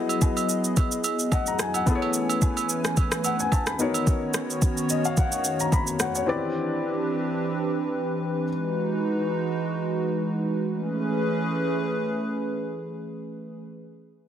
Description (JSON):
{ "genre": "amapiano", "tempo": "109 BPM", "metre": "4/4", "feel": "swing 55% on 16ths", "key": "A lydian", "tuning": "A4 = 442 Hz", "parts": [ { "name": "dark grand piano", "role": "accompaniment", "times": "0.0-8.5 s", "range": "B3 to B5", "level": "-28 LUFS", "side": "left 4 dB", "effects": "none" }, { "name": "hollow soft pad", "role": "sustained chords", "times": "0.0-13.6 s", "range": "D#3 to G#5", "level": "-27 LUFS", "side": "right 1 dB", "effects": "chorus, sidechain pumping" }, { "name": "smooth R&B drum kit", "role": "drums", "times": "0.1-6.3 s", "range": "kick drum, rim click, shaker", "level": "-24 LUFS", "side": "equal", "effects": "overdrive" }, { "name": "agogo bells and woodblock", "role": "percussion", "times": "0.1-4.1 s", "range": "none", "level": "-32 LUFS", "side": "right 8 dB", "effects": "none" } ], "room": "light reverb", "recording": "dense, heavily limited modern master", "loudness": "-23 LUFS", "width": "side -9 dB against mid", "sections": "0.0-1.9 A section; 1.9-10.7 B section; 10.7-12.9 C section", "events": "grand piano fill 1.0-1.9, 4.6-6.3", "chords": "0.0 Emaj9; 1.9 Amaj9; 3.8 Bmaj9; 6.3 Cmaj9; 8.5 Emaj9; 10.7 Amaj9" }